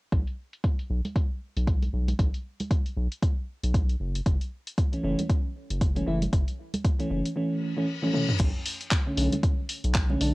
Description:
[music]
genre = deep house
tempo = 116 BPM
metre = 4/4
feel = swing 58% on 16ths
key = B minor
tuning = A4 = 440 Hz
[part]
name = round analog bass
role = bass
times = 0.1-10.3 s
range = F#1 to B1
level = -27 LUFS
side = equal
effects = sidechain pumping
[part]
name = deep house drum kit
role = drums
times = 0.1-10.3 s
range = crash cymbal, handclaps, hi-hat, toms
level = -33 LUFS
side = left 1 dB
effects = overdrive, low-pass filter on hats, low-pass filter on toms, low-pass filter on cymbals, low-pass filter on snare, low-pass filter on room
[part]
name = electronic kick drum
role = drums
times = 0.1-10.1 s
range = none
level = -25 LUFS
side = equal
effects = overdrive
[part]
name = congas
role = percussion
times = 1.0-10.2 s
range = none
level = -35 LUFS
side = right 2 dB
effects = sidechain pumping on perc
[part]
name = mellow FM electric piano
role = stabs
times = 4.9-10.3 s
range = D3 to E4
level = -28 LUFS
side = equal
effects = chorus, sidechain pumping, cassette tape, analog delay
[part]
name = reverse cymbal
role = sound effects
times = 7.6-8.4 s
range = none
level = -34 LUFS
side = left 7 dB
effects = none
[sound]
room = little or no reverb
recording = home recording on cassette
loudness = -25 LUFS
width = side -21 dB against mid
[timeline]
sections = 0.1-8.4 A section; 8.4-10.3 B section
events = filter sweep on drum 0.1-8.4; reverse cymbal 7.6-8.4; drum fill 8.0-8.4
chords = 0.1 N.C.; 4.0 F#m7; 8.4 Bm9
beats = | 0.12 0.64 1.16 1.67 | 2.19 2.71 3.23 3.74 | 4.26 4.78 5.29 5.81 | 6.33 6.85 7.36 7.88 | 8.40 8.91 9.43 9.95

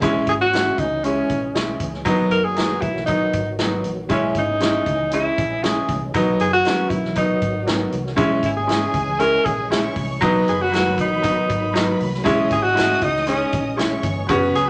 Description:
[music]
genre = uptempo 1960s-style soul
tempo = 118 BPM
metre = 4/4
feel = straight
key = unclear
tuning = A4 = 440 Hz
[part]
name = clear baby grand piano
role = accompaniment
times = 0.0-14.6 s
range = F#3 to F#4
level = -24 LUFS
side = equal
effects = none
[part]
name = percussive tonewheel organ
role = sustained chords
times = 0.0-14.7 s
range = C#3 to G#4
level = -34 LUFS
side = equal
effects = none
[part]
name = vintage muted fingered electric bass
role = bass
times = 0.0-14.7 s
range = F#1 to C#2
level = -33 LUFS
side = equal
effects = none
[part]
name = swinging big-band drum kit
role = drums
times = 0.0-14.7 s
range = hi-hat, kick drum, snare drum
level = -28 LUFS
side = equal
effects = vintage 12-bit sampler grit
[part]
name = congas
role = percussion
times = 0.0-14.7 s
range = none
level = -40 LUFS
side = equal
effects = none
[part]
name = breathy tenor saxophone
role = melody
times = 0.3-14.7 s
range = C#4 to A#4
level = -23 LUFS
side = equal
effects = none
[part]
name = clear studio string section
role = second line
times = 8.2-14.7 s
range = G#4 to D#6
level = -32 LUFS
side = equal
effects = none
[sound]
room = wet club reverb, RT60 0.6 s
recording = none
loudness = -20 LUFS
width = mono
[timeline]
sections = 0.0-14.7 A section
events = none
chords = 0.0 C#m; 2.1 B; 4.1 C#m; 6.1 B; 8.2 C#m; 10.2 B; 12.3 C#m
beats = | 0.02 0.53 1.04 1.55 | 2.06 2.57 3.08 3.59 | 4.10 4.61 5.12 5.63 | 6.14 6.65 7.16 7.67 | 8.18 8.69 9.20 9.71 | 10.22 10.73 11.23 11.74 | 12.26 12.77 13.27 13.78 | 14.29

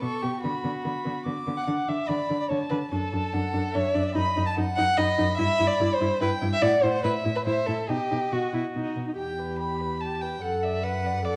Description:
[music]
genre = quick classical-period movement for string quartet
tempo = 145 BPM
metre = 3/4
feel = straight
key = E minor from 4.1 s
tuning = A4 = 440 Hz
[part]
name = rich violin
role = melody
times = 0.0-11.4 s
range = D5 to D6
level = -35 LUFS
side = equal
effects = none
[part]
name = warm violin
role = second line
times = 0.0-11.4 s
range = F#4 to B5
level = -30 LUFS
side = equal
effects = none
[part]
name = warm viola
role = accompaniment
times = 0.0-11.4 s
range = B3 to B4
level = -33 LUFS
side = equal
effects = none
[part]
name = warm cello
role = bass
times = 0.0-11.4 s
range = E2 to D3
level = -33 LUFS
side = equal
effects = none
[sound]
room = wet recital hall reverb, RT60 1.2 s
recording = worn, warbling old tape, cassette tape, warbly pitch drift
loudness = -26 LUFS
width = mono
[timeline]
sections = 0.0-9.2 A section; 9.2-11.4 B section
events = none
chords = 0.4 Bm/D; 1.7 D5; 2.9 D/F#; 4.1 B/F#; 5.4 Em/G; 6.6 Am6; 7.9 B; 9.2 Em; 10.4 D/F#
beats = 0.02 | 0.43 0.85 1.26 | 1.67 2.09 2.50 | 2.91 3.32 3.74 | 4.15 4.56 4.97 | 5.38 5.80 6.21 | 6.63 7.04 7.46 | 7.89 8.32 8.75 | 9.18 9.59 10.01 | 10.43 10.84 11.25

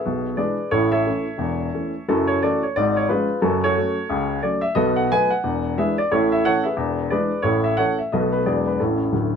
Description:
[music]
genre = jazz, stride piano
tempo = 179 BPM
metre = 4/4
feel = swing 61% on 8ths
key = A major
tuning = A4 = 442 Hz
[part]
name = dark upright piano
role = solo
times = 0.0-9.4 s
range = D1 to G#5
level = -19 LUFS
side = equal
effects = none
[sound]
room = moderate club reverb, RT60 0.5 s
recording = none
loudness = -19 LUFS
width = side -7 dB against mid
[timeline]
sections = 0.0-9.4 A section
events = upright piano fill 9.1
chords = 0.1 E7/B; 0.7 A; 2.1 F#m7; 2.7 C#7/G#; 3.4 F#m; 4.8 B7; 5.4 E7; 6.1 A; 6.8 E7; 7.4 A; 8.1 B7; 8.4 E9; 8.8 A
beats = 0.06 0.39 | 0.73 1.06 1.40 1.73 | 2.07 2.41 2.74 3.08 | 3.41 3.75 4.08 4.42 | 4.76 5.09 5.43 5.76 | 6.10 6.43 6.77 7.11 | 7.44 7.78 8.12 8.45 | 8.79 9.12

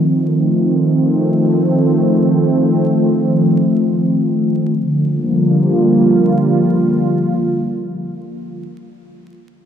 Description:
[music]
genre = ambient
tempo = free time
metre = none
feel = none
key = G minor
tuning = A4 = 440 Hz
[part]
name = warm analog pad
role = sustained chords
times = 0.0-8.6 s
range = D3 to F4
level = -13 LUFS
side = equal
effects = chorus
[sound]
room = wet huge ambient reverb, RT60 4.2 s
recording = vinyl crackle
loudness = -12 LUFS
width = side -8 dB against mid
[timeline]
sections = 0.0-4.8 A section; 4.8-7.9 B section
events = none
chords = 0.0 F7; 4.8 Gm7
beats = free time

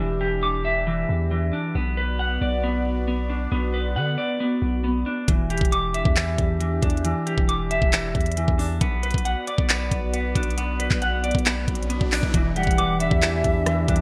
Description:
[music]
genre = hip hop, trap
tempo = 136 BPM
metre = 4/4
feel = half-time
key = E minor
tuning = A4 = 441 Hz
[part]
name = concert harp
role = accompaniment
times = 0.0-0.7, 12.3-14.0 s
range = E3 to E4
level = -30 LUFS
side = equal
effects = low-pass filter
[part]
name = warm analog pad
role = sustained chords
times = 0.0-14.0 s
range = E3 to D5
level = -34 LUFS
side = equal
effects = chorus, phaser
[part]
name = clean electric guitar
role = arpeggios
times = 0.0-14.0 s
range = E3 to D6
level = -28 LUFS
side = equal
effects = subtle chorus, low-pass filter, delay
[part]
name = long sustained 808-style bass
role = bass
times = 0.0-14.0 s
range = E1 to D3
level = -29 LUFS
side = equal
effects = none
[part]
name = trap drum kit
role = drums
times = 5.3-14.0 s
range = handclaps, hi-hat, kick drum, rim click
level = -25 LUFS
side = equal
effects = vintage 12-bit sampler grit, gated reverb
[part]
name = riser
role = sound effects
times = 11.6-12.3 s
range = none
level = -41 LUFS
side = equal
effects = none
[part]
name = jazz flute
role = second line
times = 12.6-14.0 s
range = E5 to F#5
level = -29 LUFS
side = equal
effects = delay
[sound]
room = light reverb, digital ambience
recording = bright 1980s-style digital production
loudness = -23 LUFS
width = mono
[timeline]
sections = 0.0-12.3 A section; 12.3-14.0 B section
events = riser 11.6-12.3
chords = 0.0 Em7; 1.8 Bm; 5.3 Em7; 8.8 Bm; 12.3 Em7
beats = 0.43 0.87 1.31 | 1.75 2.19 2.63 3.08 | 3.52 3.96 4.40 4.84 | 5.28 5.72 6.16 6.61 | 7.05 7.49 7.93 8.37 | 8.81 9.25 9.69 10.13 | 10.58 11.02 11.46 11.90 | 12.34 12.78 13.22 13.66

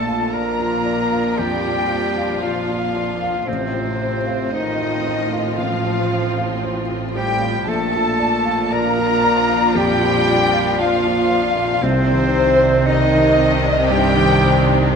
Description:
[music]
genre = cinematic, emotional film score for orchestra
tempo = 57 BPM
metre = 4/4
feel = rubato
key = Bb major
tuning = A4 = 441 Hz
[part]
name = warm symphonic violin section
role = melody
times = 0.0-14.9 s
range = C5 to Bb5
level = -23 LUFS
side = left 2 dB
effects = none
[part]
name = bright oboe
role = second line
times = 0.0-14.9 s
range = C4 to Bb4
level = -27 LUFS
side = right 2 dB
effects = none
[part]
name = clear symphonic violin section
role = second line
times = 0.0-15.0 s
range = C4 to F4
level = -27 LUFS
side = left 2 dB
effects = none
[part]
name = mellow clarinet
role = second line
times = 0.0-14.9 s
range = C4 to Bb4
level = -27 LUFS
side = right 1 dB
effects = none
[part]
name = mellow flute section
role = second line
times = 0.0-14.9 s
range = C5 to Bb5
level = -25 LUFS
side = left 1 dB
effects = none
[part]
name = clear studio viola section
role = accompaniment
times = 0.0-15.0 s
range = C3 to F3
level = -27 LUFS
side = right 3 dB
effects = none
[part]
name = felt-muted upright piano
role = accompaniment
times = 0.0-15.0 s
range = A1 to F5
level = -23 LUFS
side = left 2 dB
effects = none
[part]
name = mellow French horn section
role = sustained chords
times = 0.0-14.9 s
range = C3 to Bb3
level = -25 LUFS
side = left 2 dB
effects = none
[part]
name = clear symphonic cello section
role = bass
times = 0.0-15.0 s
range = A2 to C3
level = -26 LUFS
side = right 3 dB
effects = none
[part]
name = clear symphonic double bass section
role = bass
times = 0.0-15.0 s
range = A1 to C2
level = -26 LUFS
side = right 5 dB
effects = none
[sound]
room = wet scoring stage reverb, RT60 2.1 s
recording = minimal, uncompressed stereo recording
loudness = -15 LUFS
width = side -6 dB against mid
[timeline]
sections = 0.0-15.0 A section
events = none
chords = 0.0 Bb; 3.5 F/A; 7.7 Bb; 11.8 Cmadd9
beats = 0.33 1.38 2.42 | 3.48 4.53 5.58 6.63 | 7.68 8.73 9.76 10.80 | 11.84 12.88 13.90 14.93

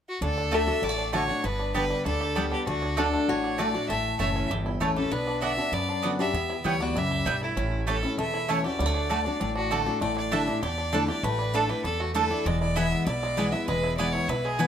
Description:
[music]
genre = bluegrass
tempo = 196 BPM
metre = 4/4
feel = straight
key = D major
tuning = A4 = 440 Hz
[part]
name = bright fiddle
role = melody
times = 0.1-14.7 s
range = E4 to E5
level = -30 LUFS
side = right 1 dB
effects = plate reverb
[part]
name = lap resonator guitar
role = second line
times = 0.2-9.7 s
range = A3 to B4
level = -32 LUFS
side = left 3 dB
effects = none
[part]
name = picked steel-string acoustic guitar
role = accompaniment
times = 0.2-14.7 s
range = E2 to G4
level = -30 LUFS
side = left 3 dB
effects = none
[part]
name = bluegrass banjo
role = arpeggios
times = 0.2-14.7 s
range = G3 to G4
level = -32 LUFS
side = equal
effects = none
[part]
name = upright bass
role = bass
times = 0.2-14.7 s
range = E1 to F#2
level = -32 LUFS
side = equal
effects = none
[part]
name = mandolin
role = stabs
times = 0.5-14.7 s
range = A3 to A5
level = -29 LUFS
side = right 7 dB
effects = none
[sound]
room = light reverb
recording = close, detailed microphones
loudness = -24 LUFS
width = side -8 dB against mid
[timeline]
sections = 0.2-10.0 A section; 10.0-14.7 B section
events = none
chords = 0.2 D; 1.4 Gadd9; 2.7 D; 3.9 A; 5.1 Bm; 6.3 Em; 7.6 A; 8.8 D; 10.0 Asus4; 12.5 E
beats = | 0.22 0.52 0.83 1.14 | 1.44 1.75 2.06 2.36 | 2.67 2.98 3.28 3.59 | 3.89 4.20 4.51 4.81 | 5.12 5.42 5.73 6.04 | 6.34 6.65 6.96 7.26 | 7.57 7.87 8.18 8.49 | 8.79 9.10 9.40 9.71 | 10.02 10.32 10.63 10.93 | 11.24 11.54 11.85 12.15 | 12.46 12.77 13.07 13.38 | 13.68 13.99 14.29 14.60

